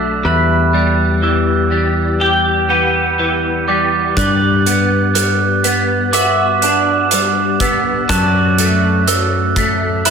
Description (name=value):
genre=post-rock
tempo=61 BPM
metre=4/4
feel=straight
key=unclear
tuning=A4 = 439 Hz
part: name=pedal steel guitar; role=sustained chords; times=0.0-10.1 s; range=G3 to B5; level=-22 LUFS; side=left 4 dB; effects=lush chorus
part: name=clean electric guitar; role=arpeggios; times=0.0-10.1 s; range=E2 to G4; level=-17 LUFS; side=left 2 dB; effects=ensemble chorus, tape echo
part: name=glockenspiel with rubber mallets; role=arpeggios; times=0.0-10.1 s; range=D6 to G6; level=-17 LUFS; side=right 9 dB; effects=tape echo
part: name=fingered electric bass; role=bass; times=0.0-10.1 s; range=B1 to G2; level=-19 LUFS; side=left 1 dB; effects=none
part: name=huge arena drum kit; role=drums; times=4.2-10.1 s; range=hi-hat, kick drum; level=-20 LUFS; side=right 1 dB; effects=none
room=moderate large studio reverb, RT60 1.0 s, small room ambience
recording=none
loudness=-12 LUFS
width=side -6 dB against mid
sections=0.0-10.1 A section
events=none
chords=0.3 Em; 4.2 Gmaj7; 8.1 Dadd9/F#